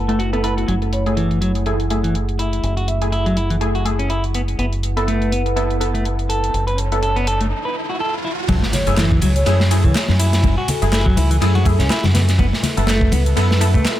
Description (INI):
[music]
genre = breakbeat, breaks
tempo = 123 BPM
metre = 4/4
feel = swing 56% on 16ths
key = F# minor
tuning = A4 = 439 Hz
[part]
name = dark analog pad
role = sustained chords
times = 0.0-14.0 s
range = A3 to G#5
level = -28 LUFS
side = right 1 dB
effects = wide subtle chorus, sidechain pumping
[part]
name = deep dub fingered electric bass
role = bass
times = 0.0-13.8 s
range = F#1 to F#2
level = -18 LUFS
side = equal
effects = none
[part]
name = clean electric guitar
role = riff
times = 0.1-13.8 s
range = E3 to B4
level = -23 LUFS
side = equal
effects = tube saturation, low-pass filter, analog delay
[part]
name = orchestra-hit-like synth stab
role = stabs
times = 0.1-13.8 s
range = A3 to A4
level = -25 LUFS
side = left 1 dB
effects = built-in reverb, analog delay
[part]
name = house drum kit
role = drums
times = 0.1-14.0 s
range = handclaps, hi-hat, ride cymbal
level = -29 LUFS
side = equal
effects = low-pass filter on hats, low-pass filter on cymbals, low-pass filter on snare, analog delay
[part]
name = vibraphone with soft mallets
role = melody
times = 0.9-3.6, 8.7-10.9 s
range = A4 to E5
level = -28 LUFS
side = equal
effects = old record sound, analog delay
[part]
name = riser and impact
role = sound effects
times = 5.8-10.4 s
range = none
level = -28 LUFS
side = right 1 dB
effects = none
[part]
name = crunchy breakbeat drum kit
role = drums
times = 8.5-14.0 s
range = crash cymbal, kick drum, ride cymbal, snare drum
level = -20 LUFS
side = equal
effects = analog delay
[part]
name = congas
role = percussion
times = 8.5-13.6 s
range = none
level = -26 LUFS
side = left 4 dB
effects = none
[sound]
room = light reverb, small room ambience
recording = echo-heavy mix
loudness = -15 LUFS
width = side -13 dB against mid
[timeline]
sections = 0.0-8.5 A section; 8.5-14.0 B section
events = filter sweep on clean electric guitar 0.0-8.5; riser 5.8-8.5; break 7.5-8.5; drop 8.5-14.0; impact 8.5-10.4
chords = 0.0 B7sus4/F#; 0.7 F#m9; 4.6 B7sus4/F#; 8.5 F#m9; 12.4 B7sus4/F#